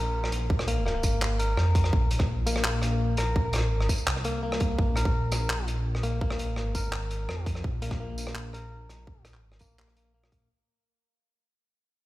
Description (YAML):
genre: half-time drum and bass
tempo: 168 BPM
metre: 4/4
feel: half-time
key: unclear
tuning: A4 = 436 Hz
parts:
  - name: direct-recorded clean electric guitar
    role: arpeggios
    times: 0.0-10.5 s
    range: Bb3 to Bb4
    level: -33 LUFS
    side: left 2 dB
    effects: ping-pong delay
  - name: dark detuned saw bass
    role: bass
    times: 0.0-10.5 s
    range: Ab1 to F2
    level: -28 LUFS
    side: equal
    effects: none
  - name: crunchy breakbeat drum kit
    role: drums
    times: 0.2-10.4 s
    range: handclaps, hi-hat, rim click, tambourine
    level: -33 LUFS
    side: equal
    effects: none
  - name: electronic kick drum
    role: drums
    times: 0.5-10.4 s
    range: none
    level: -27 LUFS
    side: equal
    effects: overdrive
room: studio reverb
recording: played on a big sound system in a bare room, stone room reverb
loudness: -25 LUFS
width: side -17 dB against mid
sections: 0.0-10.5 A section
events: drop 0.0-10.5; fade-out 4.8-10.5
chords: 0.0 Bb5